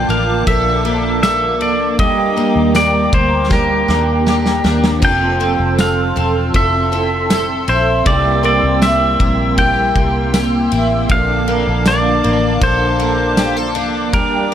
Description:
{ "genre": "dream pop", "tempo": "79 BPM", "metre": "4/4", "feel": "straight", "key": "unclear", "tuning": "A4 = 444 Hz", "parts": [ { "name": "pedal steel guitar", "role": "melody", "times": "0.0-14.5 s", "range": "Bb4 to G5", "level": "-17 LUFS", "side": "equal", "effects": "digital delay" }, { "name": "electric guitar through a small old amp", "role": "accompaniment", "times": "0.0-14.5 s", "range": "C3 to A4", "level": "-21 LUFS", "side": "right 4 dB", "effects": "tremolo, ensemble chorus" }, { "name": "hollow soft pad", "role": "sustained chords", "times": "0.0-14.5 s", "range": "Bb3 to E6", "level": "-21 LUFS", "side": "right 1 dB", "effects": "ensemble chorus" }, { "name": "picked twelve-string acoustic guitar", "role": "arpeggios", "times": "0.0-14.5 s", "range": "C3 to A4", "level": "-21 LUFS", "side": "left 2 dB", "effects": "analog chorus, digital delay" }, { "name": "vintage muted fingered electric bass", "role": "bass", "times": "0.0-14.5 s", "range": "E1 to Eb2", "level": "-20 LUFS", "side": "equal", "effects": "none" }, { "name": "loose indie drum kit", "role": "drums", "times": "0.1-14.5 s", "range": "crash cymbal, kick drum, ride cymbal, snare drum, tambourine", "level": "-19 LUFS", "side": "equal", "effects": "none" } ], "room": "light reverb, small room ambience", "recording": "none", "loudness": "-12 LUFS", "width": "side -10 dB against mid", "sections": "0.0-14.5 A section", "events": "drum fill 3.5-5.0", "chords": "0.0 Bbmaj7; 2.0 Ebmaj7; 5.0 Fmaj7; 8.1 C7; 11.1 Bbmaj7", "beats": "0.47 1.23 | 1.99 2.75 3.50 4.26 | 5.02 5.78 6.54 7.30 | 8.06 8.82 9.58 10.34 | 11.10 11.86 12.62 13.38 | 14.14" }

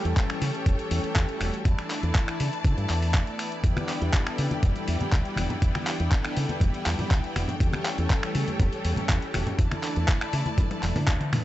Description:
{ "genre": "nu-disco, nu disco", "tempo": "121 BPM", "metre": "4/4", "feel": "straight", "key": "E dorian", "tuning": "A4 = 441 Hz", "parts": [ { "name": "warm analog pad", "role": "accompaniment", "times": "0.0-11.4 s", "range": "E3 to A4", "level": "-32 LUFS", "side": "equal", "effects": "chorus, tape echo" }, { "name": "bright studio string section", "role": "sustained chords", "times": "0.0-11.4 s", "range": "E4 to A5", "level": "-35 LUFS", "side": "left 2 dB", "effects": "sidechain pumping" }, { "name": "fingered electric bass with an envelope filter", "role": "bass", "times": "0.0-11.2 s", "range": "E1 to C#3", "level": "-28 LUFS", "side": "equal", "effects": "tube saturation" }, { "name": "dusty soul sampler-style drum kit", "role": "drums", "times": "0.1-11.4 s", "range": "finger snaps, handclaps, hi-hat, toms", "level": "-31 LUFS", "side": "equal", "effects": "none" }, { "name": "electronic kick drum", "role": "drums", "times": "0.2-11.2 s", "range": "none", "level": "-23 LUFS", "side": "equal", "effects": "none" }, { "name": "congas", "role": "percussion", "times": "3.8-11.4 s", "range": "none", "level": "-33 LUFS", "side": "left 1 dB", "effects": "none" } ], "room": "little or no reverb", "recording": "dry, gritty hardware recording, nothing above 8.0 kHz", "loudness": "-23 LUFS", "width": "side -14 dB against mid", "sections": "0.0-11.4 A section", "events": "drum fill 10.6-11.4; band accent 11.1", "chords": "0.0 A7/E; 1.7 Dsus2/E; 3.6 Em7; 7.6 A7/E; 9.6 Dsus2/E", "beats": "0.17 0.66 1.16 | 1.65 2.15 2.65 3.14 | 3.64 4.13 4.63 5.12 | 5.62 6.12 6.61 7.11 | 7.60 8.10 8.60 9.09 | 9.59 10.08 10.58 11.07" }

